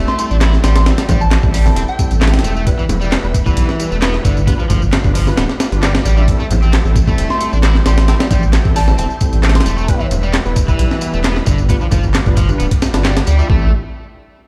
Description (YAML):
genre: breakbeat, breaks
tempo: 133 BPM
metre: 4/4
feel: straight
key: A minor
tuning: A4 = 436 Hz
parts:
  - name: tonewheel organ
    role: sustained chords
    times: 0.0-13.7 s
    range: E4 to B5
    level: -33 LUFS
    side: equal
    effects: none
  - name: crunchy overdriven guitar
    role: riff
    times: 0.0-13.7 s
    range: D3 to E4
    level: -26 LUFS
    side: equal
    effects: vintage 12-bit sampler grit, delay
  - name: barky tine electric piano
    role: stabs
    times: 0.0-13.7 s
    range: G3 to E5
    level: -27 LUFS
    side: equal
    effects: overdrive, ensemble chorus, delay
  - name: saturated sub bass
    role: bass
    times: 0.0-13.7 s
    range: D1 to D2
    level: -17 LUFS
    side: equal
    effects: tube saturation
  - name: soft synth bell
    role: melody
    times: 0.1-2.3, 7.3-9.9 s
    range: G5 to C6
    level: -26 LUFS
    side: equal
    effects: chorus, phaser, small speaker sound, delay
  - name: breakbeat sampler-style drum kit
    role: drums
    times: 0.1-13.6 s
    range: hi-hat, kick drum, snare drum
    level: -18 LUFS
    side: equal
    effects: none
  - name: electronic tambourine and handclaps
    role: drums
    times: 0.1-13.5 s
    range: none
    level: -29 LUFS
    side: equal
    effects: none
  - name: congas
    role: percussion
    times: 1.1-12.6 s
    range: none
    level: -25 LUFS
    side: equal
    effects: none
room: little or no reverb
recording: played on a big sound system in a bare room, large studio reverb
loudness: -14 LUFS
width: mono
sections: 0.0-13.5 A section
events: drop 0.0-13.5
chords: 0.0 Am7; 2.7 Em; 4.5 G7; 6.3 Am7; 9.9 Em; 11.7 G7; 13.5 Am7